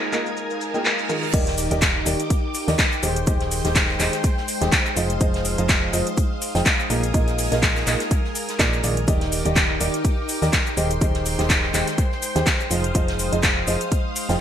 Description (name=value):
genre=piano house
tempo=124 BPM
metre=4/4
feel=swing 55% on 16ths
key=Bb mixolydian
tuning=A4 = 440 Hz
part: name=string machine, violins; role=sustained chords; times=0.0-14.4 s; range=Eb4 to Eb6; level=-31 LUFS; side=left 1 dB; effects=ensemble chorus, sidechain pumping
part: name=warm concert grand piano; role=riff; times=0.0-14.4 s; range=Eb3 to G5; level=-26 LUFS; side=right 1 dB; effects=sidechain pumping, digital delay
part: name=unplugged drum kit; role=drums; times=0.0-14.4 s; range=hi-hat, shaker, snare drum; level=-35 LUFS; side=equal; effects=none
part: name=warbly tape-like pad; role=texture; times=0.0-14.4 s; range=Ab3 to D6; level=-32 LUFS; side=left 1 dB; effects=chorus, built-in reverb, sidechain pumping
part: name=house drum kit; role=drums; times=0.1-14.4 s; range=crash cymbal, handclaps, hi-hat, shaker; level=-23 LUFS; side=equal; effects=low-pass filter on perc, low-pass filter on snare, low-pass filter on hats, low-pass filter on cymbals, gated reverb
part: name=reverse cymbal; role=sound effects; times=0.6-1.3 s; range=none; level=-32 LUFS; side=right 5 dB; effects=none
part: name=solid FM bass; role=bass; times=1.3-14.4 s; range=Eb1 to Eb2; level=-25 LUFS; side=equal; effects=sidechain pumping
part: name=electronic kick drum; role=drums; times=1.3-14.0 s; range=none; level=-22 LUFS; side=equal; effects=none
room=light reverb, studio reverb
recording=bright 1980s-style digital production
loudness=-19 LUFS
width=side -9 dB against mid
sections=0.0-1.3 A section; 1.3-14.4 B section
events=reverse cymbal 0.6-1.3; drop 1.3-14.4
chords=0.0 Bb7sus4; 1.3 Ebmaj7; 3.0 Abmaj7/Eb; 5.0 Fm7; 6.9 Bb7sus4; 9.1 Ebmaj7; 10.8 Abmaj7/Eb; 12.7 Fm7